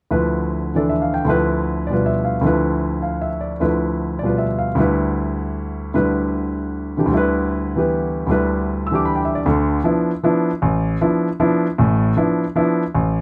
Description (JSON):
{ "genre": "jazz", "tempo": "154 BPM", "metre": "3/4", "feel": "swing 64% on 8ths", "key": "D dorian", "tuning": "A4 = 439 Hz", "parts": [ { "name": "warm baby grand piano", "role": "solo", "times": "0.1-13.2 s", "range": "A1 to E6", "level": "-19 LUFS", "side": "equal", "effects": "none" } ], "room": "light reverb", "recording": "close, detailed microphones", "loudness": "-19 LUFS", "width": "mono", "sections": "0.1-9.4 A section; 9.4-13.2 B section", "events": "none", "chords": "0.1 Dm69; 4.8 Em/D; 9.4 Dm69" }